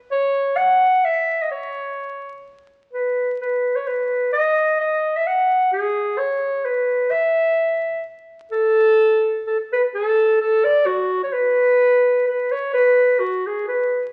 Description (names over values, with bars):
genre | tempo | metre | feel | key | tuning
alpine folk | 128 BPM | 3/4 | straight | E major | A4 = 440 Hz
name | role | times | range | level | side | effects
warm clarinet | solo | 0.1-14.0 s | F#4 to F#5 | -19 LUFS | equal | none
room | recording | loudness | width
moderate large studio reverb, RT60 1.4 s | very old 78 rpm record, vinyl crackle, nothing above 11.0 kHz | -19 LUFS | mono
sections
0.0-8.5 A section; 8.5-14.1 B section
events
none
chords
none